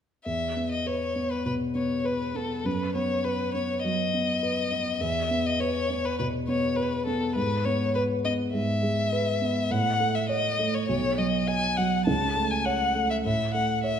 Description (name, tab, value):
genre	quick classical-period movement for piano trio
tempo	102 BPM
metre	4/4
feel	rubato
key	E major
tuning	A4 = 440 Hz
part	rich violin	melody	0.2-14.0 s	A4 to A5	-28 LUFS	left 3 dB	none
part	dark grand piano	accompaniment	0.3-14.0 s	B1 to D#5	-27 LUFS	right 1 dB	none
room	moderate scoring stage reverb, RT60 1.8 s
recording	minimal, uncompressed stereo recording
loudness	-24 LUFS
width	side -8 dB against mid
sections	0.3-14.0 A section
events	none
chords	0.3 E5; 2.7 B/F#; 5.0 E5; 7.4 E/G#; 9.7 A; 10.9 B; 12.1 A/C#; 13.2 A